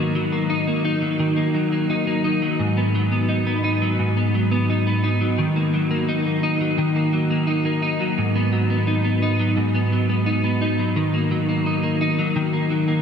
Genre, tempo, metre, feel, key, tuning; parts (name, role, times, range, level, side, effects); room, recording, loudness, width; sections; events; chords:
dream pop; 86 BPM; 4/4; straight; Eb minor; A4 = 441 Hz
clean electric guitar; solo; 0.0-13.0 s; Ab2 to Eb4; -18 LUFS; equal; ensemble chorus, diffuse ambient delay
wet huge ambient reverb, RT60 8.3 s; dreamy mix soaked in reverb; -18 LUFS; side -7 dB against mid
0.0-13.0 A section
0.0 Ebm; 2.6 Abm7; 5.4 Ebm; 8.2 Abm7; 11.0 Ebm